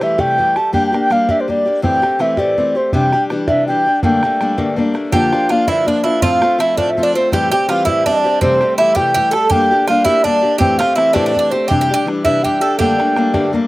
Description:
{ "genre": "celtic folk, Celtic jig", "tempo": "110 BPM (dotted quarters)", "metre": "6/8", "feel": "straight", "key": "G dorian", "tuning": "A4 = 440 Hz", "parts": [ { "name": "wooden flute", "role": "melody", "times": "0.0-13.5 s", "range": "C5 to A5", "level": "-15 LUFS", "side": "equal", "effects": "none" }, { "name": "picked acoustic archtop guitar", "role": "accompaniment", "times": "0.0-13.7 s", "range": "G2 to G4", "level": "-18 LUFS", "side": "left 2 dB", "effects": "none" }, { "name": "bodhran", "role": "percussion", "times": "0.0-13.6 s", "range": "none", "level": "-22 LUFS", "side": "right 1 dB", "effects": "none" }, { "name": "Irish bouzouki", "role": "second line", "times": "5.1-13.5 s", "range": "C4 to A4", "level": "-19 LUFS", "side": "right 3 dB", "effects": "none" } ], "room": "little or no reverb", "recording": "recorded outdoors, with no room sound", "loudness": "-12 LUFS", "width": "side -18 dB against mid", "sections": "0.0-5.1 A section; 5.1-13.7 A section", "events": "none", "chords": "0.0 C6; 0.7 Gm; 1.8 Am7; 2.9 Cadd9; 4.0 Gmadd9; 5.1 Gm7; 6.2 F/A; 7.3 Am7; 8.4 C6; 9.5 Gm; 10.6 Am7; 11.7 Cadd9; 12.8 Gmadd9", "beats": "0.19 | 0.74 1.29 | 1.84 2.38 | 2.93 3.48 | 4.03 4.58 | 5.12 5.67 | 6.22 6.77 | 7.32 7.86 | 8.41 8.96 | 9.51 10.05 | 10.60 11.15 | 11.70 12.25 | 12.79 13.34" }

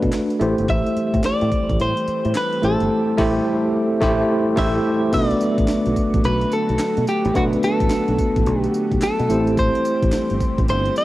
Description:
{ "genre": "R&B, new jack swing", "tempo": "108 BPM", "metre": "4/4", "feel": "swing 63% on 16ths", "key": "unclear", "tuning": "A4 = 440 Hz", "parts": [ { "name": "bell-like tine electric piano", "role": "accompaniment", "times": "0.0-11.0 s", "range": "A3 to D5", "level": "-20 LUFS", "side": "equal", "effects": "medium stereo tremolo" }, { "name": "fingered electric bass", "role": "bass", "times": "0.0-10.9 s", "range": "G1 to B2", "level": "-23 LUFS", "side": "equal", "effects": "none" }, { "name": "breakbeat sampler-style drum kit", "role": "drums", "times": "0.0-11.0 s", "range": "crash cymbal, handclaps, hi-hat, kick drum, snare drum, tambourine", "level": "-24 LUFS", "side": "equal", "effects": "cassette tape" }, { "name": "direct-recorded clean electric guitar", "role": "melody", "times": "0.7-11.0 s", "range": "F#4 to E5", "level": "-23 LUFS", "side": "equal", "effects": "wide subtle chorus, cassette tape" }, { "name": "lush unison pad", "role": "sustained chords", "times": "0.7-11.0 s", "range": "D3 to G4", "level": "-31 LUFS", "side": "equal", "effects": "chorus" } ], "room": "light reverb", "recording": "home recording on cassette", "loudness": "-17 LUFS", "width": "side -16 dB against mid", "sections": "0.0-5.1 A section; 5.1-11.0 B section", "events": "silent gap 2.9-5.1; band accent 2.9-5.1", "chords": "0.4 Am7; 5.1 Bm7; 9.3 Am7", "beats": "0.13 | 0.68 1.24 1.79 2.35 | 2.91 3.46 4.02 4.57 | 5.13 5.68 6.24 6.79 | 7.35 7.91 8.46 9.02 | 9.57 10.13 10.68" }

